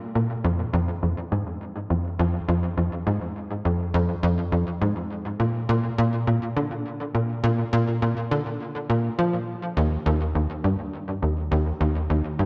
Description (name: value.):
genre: ambient.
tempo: 103 BPM.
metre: 4/4.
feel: straight.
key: F dorian.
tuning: A4 = 442 Hz.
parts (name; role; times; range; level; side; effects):
tight sequencer bass; solo; 0.2-12.5 s; Eb2 to F3; -25 LUFS; equal; lush chorus, tape echo.
room: wet plate reverb, RT60 2.9 s.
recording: echo-heavy mix, cassette tape.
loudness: -25 LUFS.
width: mono.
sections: 0.0-12.5 A section.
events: none.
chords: none.